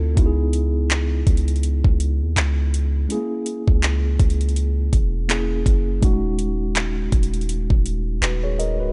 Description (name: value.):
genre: contemporary R&B.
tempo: 82 BPM.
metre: 4/4.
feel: swing 58% on 16ths.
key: unclear.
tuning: A4 = 443 Hz.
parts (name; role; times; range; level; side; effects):
mellow tine electric piano; accompaniment; 0.0-8.9 s; G#3 to D#5; -29 LUFS; equal; none.
long sustained 808-style bass; bass; 0.0-8.9 s; C#1 to D#2; -23 LUFS; equal; none.
smooth R&B drum kit; drums; 0.2-8.8 s; handclaps, hi-hat, kick drum; -22 LUFS; equal; none.
room: digital ambience.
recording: nothing above 10.9 kHz.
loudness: -21 LUFS.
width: mono.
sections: 0.0-8.9 A section.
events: break 0.0.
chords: 0.2 C#m7; 3.1 A#m7b5; 5.3 F#7; 6.0 C#9sus4.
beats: | 0.17 0.91 1.64 2.37 | 3.10 3.83 4.56 5.29 | 6.03 6.76 7.49 8.22.